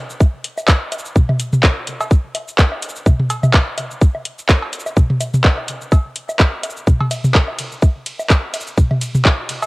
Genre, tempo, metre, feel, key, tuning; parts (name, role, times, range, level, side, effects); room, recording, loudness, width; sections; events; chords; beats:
techno; 126 BPM; 4/4; swing 56% on 16ths
garage drum kit; drums; 0.1-9.7 s; handclaps, hi-hat, ride cymbal, shaker; -20 LUFS; equal
electronic kick drum; drums; 0.2-9.4 s; -11 LUFS; equal
electronic woodblock, cowbell and toms; percussion; 0.2-9.7 s; -19 LUFS; equal; analog delay
light reverb, digital ambience; home recording on cassette; -14 LUFS; side -23 dB against mid
0.0-9.7 A section
0.20 0.68 | 1.16 1.63 2.11 2.59 | 3.06 3.54 4.01 4.49 | 4.97 5.44 5.92 6.39 | 6.87 7.35 7.82 8.30 | 8.78 9.25